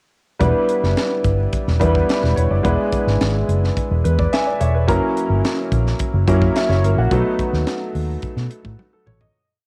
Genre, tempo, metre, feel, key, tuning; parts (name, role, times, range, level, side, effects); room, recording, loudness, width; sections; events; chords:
polished 1980s jazz-funk pop; 108 BPM; 4/4; straight; E dorian; A4 = 438 Hz
clear grand piano; accompaniment; 0.4-9.5 s; F#3 to G#5; -22 LUFS; equal; analog chorus, cassette tape
vintage muted fingered electric bass; bass; 0.4-9.3 s; E1 to B2; -20 LUFS; equal
crisp fusion drum kit; drums; 0.4-9.3 s; hi-hat, kick drum, snare drum, toms; -26 LUFS; equal; cassette tape
light reverb; home recording on cassette; -18 LUFS; mono
0.4-9.3 verse
grand piano fill 4.0-4.9; fade-out 7.1-9.3; drum fill 8.8-9.3
0.4 Em7; 2.6 E7; 4.9 F#7; 7.1 B7